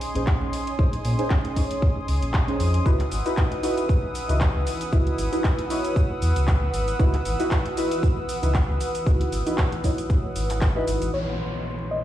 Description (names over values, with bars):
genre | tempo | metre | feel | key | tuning
deep house | 116 BPM | 4/4 | swing 55% on 16ths | unclear | A4 = 440 Hz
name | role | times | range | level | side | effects
warm analog pad | sustained chords | 0.0-12.0 s | Ab3 to Fb6 | -32 LUFS | equal | chorus, vintage 12-bit sampler grit, sidechain pumping
deep mellow chord stab | stabs | 0.0-11.1 s | Db4 to Db5 | -28 LUFS | equal | chorus, sidechain pumping, ping-pong delay
house drum kit | drums | 0.0-11.9 s | crash cymbal, handclaps, hi-hat, shaker | -33 LUFS | equal | low-pass filter on snare, low-pass filter on hats, low-pass filter on perc, low-pass filter on cymbals
granular cloud pad | texture | 0.0-12.0 s | Fb3 to C6 | -34 LUFS | equal | built-in reverb, sidechain pumping
sub bass with octave | bass | 0.2-12.0 s | Ab1 to Bb2 | -25 LUFS | equal | sidechain pumping
electronic kick drum | drums | 0.3-10.7 s | none | -21 LUFS | equal | none
soft round pluck | melody | 11.1-12.0 s | Db5 to Eb5 | -30 LUFS | left 3 dB | chorus, ping-pong delay
downlifter | sound effects | 11.1-12.0 s | none | -34 LUFS | equal | none
room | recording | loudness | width
light reverb | played on a big sound system in a bare room, stone room reverb, vinyl crackle | -21 LUFS | side -13 dB against mid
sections
0.0-11.1 A section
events
none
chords
0.0 Bbm11; 2.9 Dbm11; 11.1 Bbm11